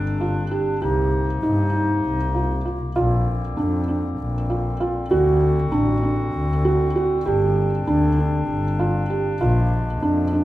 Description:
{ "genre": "contemporary instrumental, chamber music in an uneven meter", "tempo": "196 BPM (eighths)", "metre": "7/8", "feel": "straight", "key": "C minor", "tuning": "A4 = 444 Hz", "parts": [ { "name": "warm woodwind section", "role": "sustained chords", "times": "0.0-10.4 s", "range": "C3 to F#4", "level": "-28 LUFS", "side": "left 2 dB", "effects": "none" }, { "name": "felt-muted upright piano", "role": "arpeggios", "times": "0.0-10.4 s", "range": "D4 to G4", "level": "-22 LUFS", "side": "right 2 dB", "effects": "none" }, { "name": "dark double bass", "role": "bass", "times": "0.0-10.4 s", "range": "G1 to G2", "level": "-22 LUFS", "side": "left 1 dB", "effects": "none" } ], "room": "moderate recital hall reverb, RT60 1.7 s", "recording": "none", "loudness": "-19 LUFS", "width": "side -15 dB against mid", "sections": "0.0-10.4 A section", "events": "none", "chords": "0.0 Gsus4; 0.8 Cm7; 3.0 Bbadd9; 5.1 D7; 7.3 Gsus4; 9.4 Bb7", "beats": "0.21 0.51 | 0.82 1.13 1.43 1.74 2.05 2.35 2.66 | 2.97 3.27 3.58 3.89 4.19 4.50 4.81 | 5.11 5.42 5.73 6.04 6.34 6.65 6.96 | 7.26 7.57 7.88 8.18 8.49 8.80 9.10 | 9.41 9.72 10.02 10.33" }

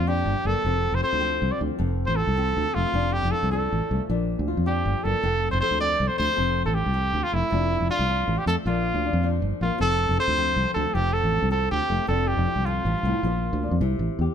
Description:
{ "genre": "highlife guitar band", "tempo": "105 BPM (dotted quarters)", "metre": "12/8", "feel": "straight", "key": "F major", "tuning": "A4 = 440 Hz", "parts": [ { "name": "clear trumpet", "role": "melody", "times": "0.0-13.8 s", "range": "E4 to D5", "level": "-25 LUFS", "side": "right 1 dB", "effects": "none" }, { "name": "flamenco guitar", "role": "accompaniment", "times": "0.0-14.3 s", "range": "F2 to A4", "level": "-30 LUFS", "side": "left 6 dB", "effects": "none" }, { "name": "fingered electric bass", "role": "bass", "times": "0.0-14.3 s", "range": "F1 to F2", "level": "-25 LUFS", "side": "equal", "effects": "none" } ], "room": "light reverb", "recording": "band playing live in one room", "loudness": "-21 LUFS", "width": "side -8 dB against mid", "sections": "0.0-14.3 A section", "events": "none", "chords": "0.0 Bb; 0.6 F; 4.1 Bb; 5.2 F; 8.7 Bb; 9.8 F; 12.1 Dm/F; 13.2 Bb; 13.8 C", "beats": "0.08 | 0.65 1.22 1.79 2.37 | 2.94 3.51 4.08 4.66 | 5.23 5.80 6.37 6.94 | 7.51 8.09 8.66 9.23 | 9.80 10.37 10.95 11.52 | 12.09 12.66 13.24 13.81" }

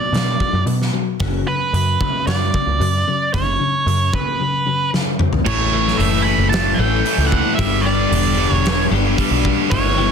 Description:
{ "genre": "quiet-loud alternative rock", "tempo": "113 BPM", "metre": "4/4", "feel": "straight", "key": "unclear", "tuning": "A4 = 440 Hz", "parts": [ { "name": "octave-fuzz lead guitar", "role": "melody", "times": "0.0-10.1 s", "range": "B4 to B5", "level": "-20 LUFS", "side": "right 4 dB", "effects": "distortion, slapback echo" }, { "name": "twelve-string electric guitar", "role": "arpeggios", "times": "0.0-10.1 s", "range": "F#2 to A4", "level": "-24 LUFS", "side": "left 8 dB", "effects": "ensemble chorus" }, { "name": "overdriven picked electric bass", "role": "bass", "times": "0.1-10.1 s", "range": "E1 to B2", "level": "-20 LUFS", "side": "equal", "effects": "none" }, { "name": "big rock drum kit", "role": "drums", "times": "0.1-9.8 s", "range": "crash cymbal, hi-hat, kick drum, snare drum, toms", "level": "-22 LUFS", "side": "equal", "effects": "none" }, { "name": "distorted electric guitar", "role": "riff", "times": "5.4-10.1 s", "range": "E2 to A3", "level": "-22 LUFS", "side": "right 13 dB", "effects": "overdrive" }, { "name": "thick fuzz guitar", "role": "riff", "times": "5.5-10.1 s", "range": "E2 to A3", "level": "-21 LUFS", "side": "left 12 dB", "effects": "distortion" } ], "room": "studio reverb", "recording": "dense, heavily limited modern master", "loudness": "-15 LUFS", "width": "side -6 dB against mid", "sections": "0.0-5.5 A section; 5.5-10.1 B section", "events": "drum fill 4.9-5.5", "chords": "0.0 Bm; 1.2 F#sus4; 5.5 A; 7.6 G", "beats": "0.13 0.66 | 1.20 1.73 2.26 2.79 | 3.33 3.86 4.39 4.93 | 5.46 5.99 6.52 7.05 | 7.59 8.12 8.65 9.18 | 9.71" }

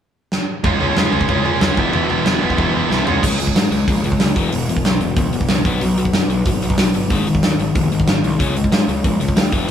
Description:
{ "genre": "punk rock", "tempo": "186 BPM", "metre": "4/4", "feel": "straight", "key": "unclear", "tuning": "A4 = 439 Hz", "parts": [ { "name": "big rock drum kit", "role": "drums", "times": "0.3-9.7 s", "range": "crash cymbal, hi-hat, kick drum, snare drum, toms", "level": "-18 LUFS", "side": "right 1 dB", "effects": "none" }, { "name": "biting overdriven guitar", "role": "riff", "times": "0.6-9.7 s", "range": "E2 to Db4", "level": "-19 LUFS", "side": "left 4 dB", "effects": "none" }, { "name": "distorted electric guitar", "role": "riff", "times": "0.6-3.2 s", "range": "Db3 to F4", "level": "-19 LUFS", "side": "right 8 dB", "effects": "overdrive" }, { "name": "fuzz picked electric bass", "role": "bass", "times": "0.6-9.6 s", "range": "E1 to Bb2", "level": "-23 LUFS", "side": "right 1 dB", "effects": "overdrive" } ], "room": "light reverb", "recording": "band playing live in one room", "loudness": "-15 LUFS", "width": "side -9 dB against mid", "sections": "0.6-3.2 A section; 3.2-9.7 B section", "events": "drum fill 0.3-0.6, 2.9-3.2", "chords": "0.0 N.C.; 0.6 Db; 1.8 E; 3.1 Db; 3.2 Db5; 4.4 E5; 5.7 B5; 7.1 Ab5; 8.4 Db5", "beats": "0.00 0.32 | 0.64 0.97 1.29 1.61 | 1.94 2.26 2.58 2.90 | 3.23 3.55 3.88 4.20 | 4.52 4.84 5.17 5.49 | 5.82 6.14 6.46 6.79 | 7.11 7.43 7.75 8.08 | 8.40 8.72 9.04 9.37 | 9.69" }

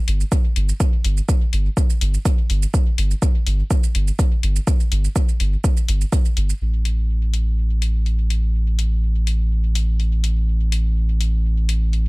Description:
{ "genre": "dub techno", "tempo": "124 BPM", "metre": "4/4", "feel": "straight", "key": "unclear", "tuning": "A4 = 444 Hz", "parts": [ { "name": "soft dub sub bass", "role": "bass", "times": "0.1-12.1 s", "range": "G1 to A1", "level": "-18 LUFS", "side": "equal", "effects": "sidechain pumping" }, { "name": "electronic hi-hat and shaker", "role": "drums", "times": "0.1-12.0 s", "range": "none", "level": "-29 LUFS", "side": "left 2 dB", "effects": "overdrive" }, { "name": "electronic kick drum", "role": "drums", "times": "0.3-6.2 s", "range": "none", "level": "-18 LUFS", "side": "equal", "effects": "overdrive" } ], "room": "little or no reverb", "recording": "echo-heavy mix", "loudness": "-17 LUFS", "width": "side -24 dB against mid", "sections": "0.0-6.6 A section; 6.6-12.1 B section", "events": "none", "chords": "none", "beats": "0.32 | 0.80 1.29 1.77 2.25 | 2.74 3.22 3.71 4.19 | 4.67 5.16 5.64 6.13 | 6.61 7.09 7.58 8.06 | 8.54 9.03 9.51 10.00 | 10.48 10.96 11.45 11.93" }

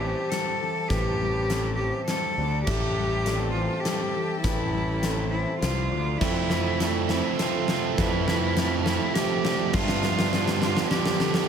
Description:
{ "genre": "post-rock", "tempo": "102 BPM", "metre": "3/4", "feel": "straight", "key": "A minor", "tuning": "A4 = 440 Hz", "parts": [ { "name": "clear cello", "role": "melody", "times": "0.0-11.5 s", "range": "E4 to A4", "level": "-29 LUFS", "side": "equal", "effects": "tape echo" }, { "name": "warm chamber string section", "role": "sustained chords", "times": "0.0-11.5 s", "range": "C4 to F6", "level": "-36 LUFS", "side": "left 2 dB", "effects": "none" }, { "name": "mellow electric guitar", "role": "arpeggios", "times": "0.0-11.5 s", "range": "F2 to C4", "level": "-34 LUFS", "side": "left 3 dB", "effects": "spring reverb, tape echo" }, { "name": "vibraphone with medium hard mallets", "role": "arpeggios", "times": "0.0-11.5 s", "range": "A4 to C6", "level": "-36 LUFS", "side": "right 2 dB", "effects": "tape echo" }, { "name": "fuzz fingered electric bass", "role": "bass", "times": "0.0-10.7 s", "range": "A1 to G2", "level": "-29 LUFS", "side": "equal", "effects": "overdrive" }, { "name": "huge arena drum kit", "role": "drums", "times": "0.3-11.5 s", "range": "crash cymbal, hi-hat, kick drum, snare drum", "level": "-28 LUFS", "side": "left 1 dB", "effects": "none" }, { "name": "biting overdriven guitar", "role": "riff", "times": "6.2-11.5 s", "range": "F2 to D4", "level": "-27 LUFS", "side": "right 13 dB", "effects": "spring reverb" } ], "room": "light reverb, studio reverb", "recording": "none", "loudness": "-23 LUFS", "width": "side -7 dB against mid", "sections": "0.0-11.5 A section", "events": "build-up 0.0-11.5; drum fill 0.0-11.5", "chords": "0.0 Am7; 2.4 D5; 2.7 Am7; 5.6 C5; 5.9 D5; 6.2 Fmaj7; 9.7 G7sus4", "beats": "0.32 | 0.91 1.50 2.09 | 2.68 3.27 3.86 | 4.45 5.04 5.63 | 6.22 6.81 7.40 | 7.99 8.57 9.16 | 9.75 10.33 10.92" }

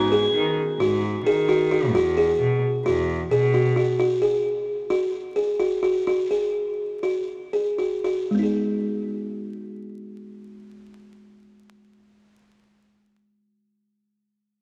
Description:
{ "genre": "contemporary instrumental, chamber music in an uneven meter", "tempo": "226-264 BPM (eighths)", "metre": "9/8", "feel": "straight", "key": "G# minor", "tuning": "A4 = 442 Hz", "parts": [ { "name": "rich cello", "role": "bass", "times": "0.0-4.0 s", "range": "E2 to D#3", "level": "-28 LUFS", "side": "equal", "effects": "none" }, { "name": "buzzing kalimba", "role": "arpeggios", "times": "0.1-13.0 s", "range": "G#3 to G#4", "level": "-24 LUFS", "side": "equal", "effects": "none" } ], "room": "wet plate reverb, RT60 3.5 s", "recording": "vinyl crackle", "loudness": "-23 LUFS", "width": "mono", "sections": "0.0-8.3 A section; 8.3-13.1 B section", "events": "slowing down 4.4-8.3", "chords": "0.0 G#5; 1.9 Eadd9; 4.0 F#sus2; 8.3 G#m", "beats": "0.12 0.35 0.58 0.80 1.03 1.26 1.49 1.71 | 1.94 2.17 2.40 2.62 2.85 3.08 3.31 3.54 3.76 | 3.99 4.22 4.45 4.67 4.90 5.13 5.36 5.59 5.83 | 6.07 6.30 6.54 6.79 7.03 7.28 7.53 7.78 8.04 | 8.30 8.57 8.83 9.10 9.36 9.62 9.89 10.15 10.42 | 10.68 10.95 11.21 11.48 11.74 12.01 12.27 12.54 12.80" }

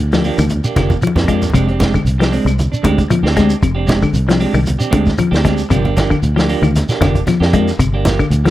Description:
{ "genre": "afrobeat", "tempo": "115 BPM", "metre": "4/4", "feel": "swing 54% on 16ths", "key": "F dorian", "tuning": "A4 = 440 Hz", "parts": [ { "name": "fingered electric bass", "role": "bass", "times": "0.0-8.5 s", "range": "F1 to F2", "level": "-16 LUFS", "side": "equal", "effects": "none" }, { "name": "semi-hollow electric guitar", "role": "arpeggios", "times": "0.1-8.5 s", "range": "C3 to Ab3", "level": "-18 LUFS", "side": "left 4 dB", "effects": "spring reverb" }, { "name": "semi-hollow electric guitar", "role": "stabs", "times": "0.1-8.5 s", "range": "F3 to G4", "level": "-19 LUFS", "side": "right 4 dB", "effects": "none" }, { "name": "warm soul drum kit", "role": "drums", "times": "0.1-8.5 s", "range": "hi-hat, kick drum, snare drum", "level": "-18 LUFS", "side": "equal", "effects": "none" }, { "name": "congas", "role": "percussion", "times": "0.1-8.5 s", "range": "none", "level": "-21 LUFS", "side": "right 1 dB", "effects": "none" }, { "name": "shekere", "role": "percussion", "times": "0.2-8.5 s", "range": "none", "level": "-23 LUFS", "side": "right 1 dB", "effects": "none" }, { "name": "claves", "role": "percussion", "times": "0.4-8.3 s", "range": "none", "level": "-32 LUFS", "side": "left 4 dB", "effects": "none" } ], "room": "little or no reverb", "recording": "dry, close 1970s-style studio recording", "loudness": "-12 LUFS", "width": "side -14 dB against mid", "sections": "0.0-8.5 A section", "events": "drum fill 0.9-1.5", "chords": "0.0 Gm7; 1.5 Fm69; 5.7 Gm7", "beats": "0.51 1.03 | 1.55 2.07 2.59 3.11 | 3.63 4.15 4.67 5.19 | 5.71 6.23 6.75 7.27 | 7.79 8.31" }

